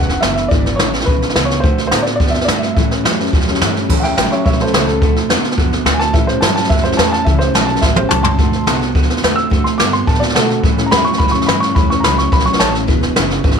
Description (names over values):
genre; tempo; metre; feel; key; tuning
rockabilly; 213 BPM; 4/4; straight; A mixolydian; A4 = 440 Hz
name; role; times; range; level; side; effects
warm upright piano; melody; 0.0-12.7 s; F#4 to E6; -19 LUFS; right 1 dB; none
picked steel-string acoustic guitar; accompaniment; 0.0-13.6 s; A2 to B4; -21 LUFS; left 14 dB; none
electric guitar through a small old amp; riff; 0.0-13.6 s; E2 to B3; -21 LUFS; right 15 dB; none
upright bass; bass; 0.0-13.6 s; E1 to B2; -22 LUFS; equal; none
jazz brush drum kit; drums; 0.0-13.5 s; crash cymbal, hi-hat, kick drum, snare drum, toms; -15 LUFS; equal; none
room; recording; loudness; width
little or no reverb; 1960s-style stereo with parts hard left and right; -12 LUFS; side -6 dB against mid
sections
0.0-3.9 A section; 3.9-13.6 B section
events
upright piano solo 3.9-13.6; drum fill 7.8-8.4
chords
0.0 E7; 1.6 D7; 2.8 A7; 5.0 D7; 6.1 A7; 8.4 D7; 10.6 A7; 12.9 E7